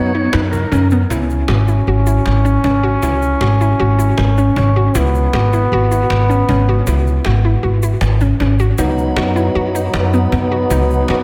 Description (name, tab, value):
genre	progressive instrumental, band music in an uneven meter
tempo	156 BPM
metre	5/4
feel	straight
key	C# minor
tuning	A4 = 441 Hz
part	clear trombone	second line	0.0-11.2 s	B3 to D#4	-22 LUFS	equal	none
part	tonewheel organ	accompaniment	0.0-0.9, 8.8-11.2 s	F#3 to C#5	-22 LUFS	equal	overdrive, stopped rotary speaker
part	hollow square pluck	arpeggios	0.0-11.2 s	B3 to F#4	-22 LUFS	equal	chorus, diffuse ambient delay
part	upright bass	bass	0.0-11.2 s	G#1 to F#2	-17 LUFS	equal	none
part	cajon	drums	0.1-11.2 s	none	-28 LUFS	equal	none
part	egg shaker	percussion	0.5-11.0 s	none	-36 LUFS	equal	none
room	moderate lush hall reverb, RT60 2.1 s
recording	dreamy mix soaked in reverb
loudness	-15 LUFS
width	mono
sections	0.0-1.1 A section; 1.1-11.2 B section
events	tonewheel organ solo 0.0-1.1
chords	0.0 B; 1.1 C#m7; 8.8 B/C#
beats	0.34 0.72 | 1.11 1.49 1.87 2.26 2.64 | 3.03 3.41 3.80 4.18 4.56 | 4.95 5.33 5.72 6.10 6.49 | 6.87 7.25 7.64 8.02 8.41 | 8.79 9.17 9.56 9.94 10.33 | 10.71 11.10